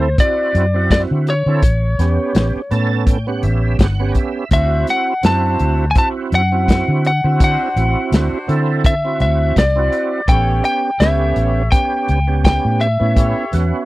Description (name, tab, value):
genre	straight-eighth soul blues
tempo	83 BPM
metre	4/4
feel	swing 56% on 16ths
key	A mixolydian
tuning	A4 = 445 Hz
part	lightly driven lead guitar	melody	0.0-13.9 s	C5 to A5	-19 LUFS	left 1 dB	none
part	overdriven tonewheel organ	accompaniment	0.0-13.9 s	B3 to A5	-22 LUFS	right 5 dB	slow rotary speaker, chorus vibrato
part	vintage muted fingered electric bass	bass	0.0-13.7 s	G1 to D3	-16 LUFS	equal	none
part	warm soul drum kit	drums	0.2-13.7 s	hi-hat, kick drum, snare drum	-15 LUFS	equal	none
part	clear horn section	sustained chords	4.5-13.5 s	D4 to C#5	-29 LUFS	left 2 dB	none
room	little or no reverb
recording	dry, close 1970s-style studio recording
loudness	-13 LUFS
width	side -18 dB against mid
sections	0.0-13.9 A section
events	tonewheel organ fill 2.4-4.5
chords	0.0 D7; 1.6 A7; 4.5 D7; 10.3 A7